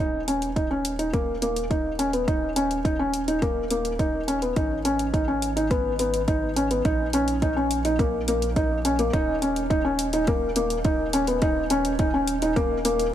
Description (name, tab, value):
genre	piano and strings electronica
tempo	105 BPM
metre	4/4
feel	straight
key	unclear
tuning	A4 = 442 Hz
part	felt-muted upright piano	riff	0.0-13.1 s	Bb3 to Eb4	-23 LUFS	equal	tape echo
part	round analog bass	bass	0.0-13.1 s	Eb1 to Bb1	-32 LUFS	right 1 dB	sidechain pumping
part	electronic hi-hat	drums	0.3-13.1 s	none	-32 LUFS	left 1 dB	small room ambience
part	electronic kick drum	drums	0.6-12.7 s	none	-26 LUFS	right 1 dB	small room ambience
room	moderate huge ambient reverb, RT60 5.9 s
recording	none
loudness	-22 LUFS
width	side -11 dB against mid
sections	0.0-13.1 A section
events	build-up 0.0-13.1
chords	0.0 Eb5; 4.6 Abm; 6.9 Bbm; 9.1 Eb5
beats	0.56 1.14 1.71 | 2.28 2.85 3.42 3.99 | 4.57 5.14 5.71 6.28 | 6.85 7.42 7.99 8.56 | 9.14 9.71 10.28 10.85 | 11.42 11.99 12.56 13.14